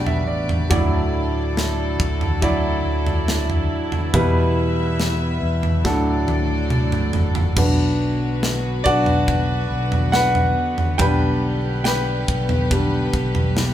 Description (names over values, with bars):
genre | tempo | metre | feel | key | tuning
pop ballad | 70 BPM | 4/4 | straight | unclear | A4 = 440 Hz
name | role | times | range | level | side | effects
warm concert grand piano | accompaniment | 0.0-13.7 s | A2 to G5 | -22 LUFS | equal | none
warm studio string section | sustained chords | 0.0-13.7 s | D3 to E5 | -27 LUFS | equal | none
mellow fretless electric bass | bass | 0.0-13.7 s | F#1 to E2 | -23 LUFS | equal | none
modern studio drum kit | drums | 0.1-13.7 s | crash cymbal, kick drum, snare drum, toms | -22 LUFS | equal | none
room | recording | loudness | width
wet studio reverb, RT60 0.6 s | band playing live in one room | -17 LUFS | side -11 dB against mid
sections
0.0-7.6 A section; 7.6-13.7 A section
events
grand piano fill 0.0-0.7; drum fill 5.9-7.6; grand piano solo 7.6-13.7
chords
0.0 G/B; 0.7 Dadd9; 4.1 Em; 5.9 D; 7.6 Bm; 11.0 G/B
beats
| 0.71 1.57 2.42 3.28 | 4.14 5.00 5.85 6.71 | 7.57 8.42 9.28 10.14 | 11.00 11.85 12.71 13.57